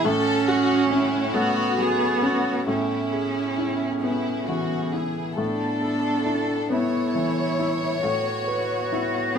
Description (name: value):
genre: neoclassical piano and strings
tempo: 45 BPM (dotted quarters)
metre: 6/8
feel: rubato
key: A major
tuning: A4 = 440 Hz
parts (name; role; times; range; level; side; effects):
- warm chamber violin section; melody; 0.0-9.4 s; E4 to C#5; -27 LUFS; left 2 dB; none
- dark cello; second line; 0.0-9.4 s; B3 to F#4; -25 LUFS; right 4 dB; none
- felt-muted upright piano; accompaniment; 0.0-9.4 s; A2 to B4; -26 LUFS; left 2 dB; none
- dark chamber string section; sustained chords; 0.0-9.4 s; A3 to B4; -34 LUFS; equal; none
room: moderate studio reverb, RT60 0.6 s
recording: band playing live in one room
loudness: -21 LUFS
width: side -7 dB against mid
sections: 0.0-9.4 A section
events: none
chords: 0.0 F#m/A; 2.7 C#m7/A; 5.4 Asus2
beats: | 0.04 1.34 | 2.67 4.04 | 5.38 6.72 | 8.04 9.36